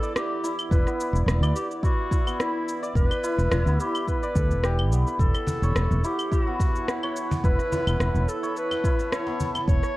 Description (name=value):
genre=organic downtempo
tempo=107 BPM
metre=4/4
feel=swing 54% on 16ths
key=E dorian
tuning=A4 = 440 Hz
part: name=mellow clarinet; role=melody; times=0.0-10.0 s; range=E4 to C#5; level=-30 LUFS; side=equal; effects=tape echo
part: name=warm analog pad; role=sustained chords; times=0.0-10.0 s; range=E4 to A5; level=-35 LUFS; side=right 2 dB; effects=chorus, sidechain pumping
part: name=santur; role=arpeggios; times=0.0-10.0 s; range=B3 to D5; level=-31 LUFS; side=left 1 dB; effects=tape echo
part: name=electronic shaker, rim click and claves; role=drums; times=0.0-9.9 s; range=none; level=-31 LUFS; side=equal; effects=none
part: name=mellow fretless electric bass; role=bass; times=0.7-9.8 s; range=E1 to D2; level=-23 LUFS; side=equal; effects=sidechain pumping
part: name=electronic kick drum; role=drums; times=0.7-9.8 s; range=none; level=-23 LUFS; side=equal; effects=none
part: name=cajon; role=percussion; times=5.5-9.7 s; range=none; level=-32 LUFS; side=equal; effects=none
room=light reverb, studio ambience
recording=worn, warbling old tape, cassette tape, warbly pitch drift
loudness=-22 LUFS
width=side -18 dB against mid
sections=0.0-10.0 A section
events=none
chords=0.0 E7(no3); 5.2 F#m/E